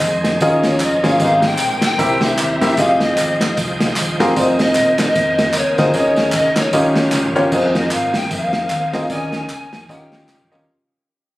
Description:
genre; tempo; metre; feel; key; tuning
uptempo gospel; 152 BPM; 4/4; swing 59% on 8ths; unclear; A4 = 440 Hz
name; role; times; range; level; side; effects
breathy bright polished pan flute; melody; 0.0-10.5 s; C5 to Ab5; -18 LUFS; left 1 dB; none
clear grand piano; accompaniment; 0.0-10.6 s; Ab2 to E5; -18 LUFS; equal; none
bright tonewheel organ; sustained chords; 0.0-10.7 s; Eb3 to G5; -23 LUFS; right 1 dB; slow rotary speaker, chorus vibrato
hollow-body short-scale fingered electric bass; bass; 0.0-10.7 s; Eb1 to Ab2; -27 LUFS; equal; none
warm soul drum kit; drums; 0.0-10.7 s; crash cymbal, hi-hat, kick drum, snare drum, toms; -21 LUFS; equal; none
handclaps and tambourine; percussion; 0.0-10.6 s; none; -27 LUFS; right 1 dB; none
room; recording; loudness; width
light reverb, studio reverb; recorded on a phone in the room; -14 LUFS; side -17 dB against mid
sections
0.0-7.5 A section; 7.5-10.7 B section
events
drum fill 7.1-7.5, 10.3-10.7; fade-out 7.5-10.7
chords
0.4 Eb9sus4; 1.2 Abmaj9; 2.0 C7; 2.8 Fm9; 4.4 Bb9sus4/F; 5.9 Eb7sus4; 6.7 Eb9; 7.5 Bb9sus4/F; 9.1 Eb7sus4; 9.9 Eb9

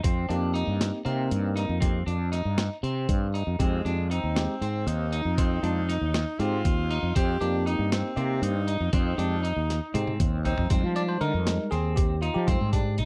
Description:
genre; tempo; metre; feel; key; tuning
progressive instrumental, band music in an uneven meter; 236 BPM (eighths); 7/8; straight; F dorian; A4 = 442 Hz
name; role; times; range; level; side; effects
clean electric guitar; arpeggios; 0.0-13.1 s; C4 to Eb4; -36 LUFS; equal; phaser
fretless electric bass; bass; 0.0-13.1 s; C2 to F3; -29 LUFS; equal; none
boom bap sampler-style drum kit; drums; 0.0-13.1 s; hi-hat, kick drum, snare drum, toms; -30 LUFS; equal; none
bell-like tine electric piano; accompaniment; 0.3-13.0 s; G3 to D5; -34 LUFS; equal; none
breathy alto saxophone; second line; 3.6-10.7 s; Ab3 to G4; -35 LUFS; equal; none
room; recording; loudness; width
little or no reverb; dry, close 1970s-style studio recording; -27 LUFS; mono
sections
0.0-10.7 A section; 10.7-13.1 B section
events
drum fill 9.7-10.7; tine electric piano solo 10.7-13.1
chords
0.0 F13sus4; 3.6 Fm7; 7.2 F13sus4; 8.9 Fm9; 10.7 Fm7

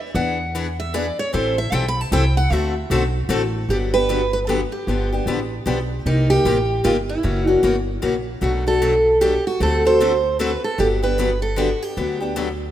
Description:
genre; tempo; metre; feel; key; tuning
acoustic string swing (jazz manouche); 152 BPM; 3/4; swing 62% on 8ths; G major; A4 = 442 Hz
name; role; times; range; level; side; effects
picked steel-string acoustic guitar; melody; 0.0-12.7 s; Eb4 to B5; -21 LUFS; right 2 dB; none
picked steel-string acoustic guitar; accompaniment; 0.1-12.5 s; B2 to A4; -22 LUFS; left 3 dB; none
upright bass; bass; 0.1-12.7 s; F#1 to E2; -23 LUFS; equal; none
room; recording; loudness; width
moderate lush hall reverb, RT60 2.5 s; rough home demo mix; -17 LUFS; side -11 dB against mid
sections
0.0-3.7 A section; 3.7-12.7 B section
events
steel-string acoustic guitar solo 0.0-3.7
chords
0.2 E7; 1.3 Am7; 2.5 D7; 3.7 Gmaj7; 4.9 G7; 6.1 Cm7; 7.2 F#7b9; 8.4 Bm7; 9.6 D7; 10.8 Gmaj7

